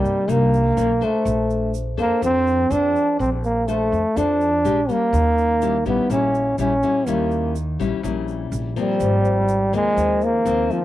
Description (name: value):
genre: bossa nova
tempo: 124 BPM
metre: 4/4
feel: straight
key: unclear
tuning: A4 = 438 Hz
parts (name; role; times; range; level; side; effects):
- breathy trombone; melody; 0.0-10.8 s; F3 to D4; -19 LUFS; right 1 dB; cassette tape
- nylon-string guitar; accompaniment; 0.0-10.8 s; G2 to C5; -25 LUFS; left 7 dB; cassette tape
- upright bass; bass; 0.0-10.7 s; Ab1 to G2; -24 LUFS; right 1 dB; tube saturation
- egg shaker; percussion; 0.1-10.8 s; none; -45 LUFS; right 12 dB; none
room: light reverb, small room ambience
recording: home recording on cassette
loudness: -17 LUFS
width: side -14 dB against mid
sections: 0.0-10.8 A section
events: none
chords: 0.0 Cm7; 0.8 Bmaj9; 1.3 Bbmaj9; 4.7 Bb6; 5.1 Eb7b9; 9.0 Ab69